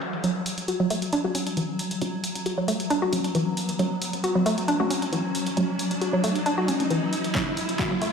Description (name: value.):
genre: driving peak-time techno.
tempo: 135 BPM.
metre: 4/4.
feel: straight.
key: F# minor.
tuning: A4 = 440 Hz.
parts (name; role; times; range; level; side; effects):
swarming drone; drone; 0.0-8.1 s; F#3; -30 LUFS; equal; built-in reverb, sidechain pumping.
punchy analog drum machine; drums; 0.0-8.1 s; handclaps, hi-hat; -32 LUFS; equal; overdrive, low-pass filter on hats, low-pass filter on snare, low-pass filter on room.
noise sweep and riser; sound effects; 0.0-8.1 s; none; -33 LUFS; left 1 dB; none.
woody wave-folded pluck; riff; 0.2-8.1 s; E3 to F#4; -26 LUFS; equal; chorus, sidechain pumping, ping-pong delay.
filtered dub chord stab; stabs; 0.2-7.4 s; F#3 to C#4; -32 LUFS; right 1 dB; none.
electronic kick drum; drums; 7.3-7.9 s; none; -30 LUFS; left 1 dB; none.
room: moderate plate reverb, RT60 1.5 s.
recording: played on a big sound system in a bare room, stone room reverb, high-pass filter.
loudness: -23 LUFS.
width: side -6 dB against mid.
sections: 0.2-8.1 A section.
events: noise sweep 0.0; build-up 0.2-8.1; riser 0.2-8.1; filter sweep on synth arpeggio sound 0.2-8.1; drum fill 7.3-8.1.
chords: 0.2 F#m.